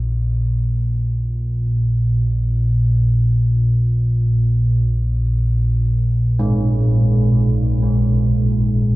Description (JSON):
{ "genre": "dark ambient drone", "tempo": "free time", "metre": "none", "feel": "none", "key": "unclear", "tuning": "A4 = 441 Hz", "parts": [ { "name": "deep rumbling drone", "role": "drone", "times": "0.0-9.0 s", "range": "Bb1 to Bb2", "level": "-15 LUFS", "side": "equal", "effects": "built-in reverb, phaser" }, { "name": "carillon bells", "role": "arpeggios", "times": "6.4-9.0 s", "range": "Ab2", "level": "-21 LUFS", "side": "right 2 dB", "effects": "tape echo" } ], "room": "light reverb", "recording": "worn, warbling old tape, cassette tape, warbly pitch drift", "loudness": "-15 LUFS", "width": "side -19 dB against mid", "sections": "0.0-9.0 A section", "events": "none", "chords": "0.0 Bb7(no3)", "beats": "free time" }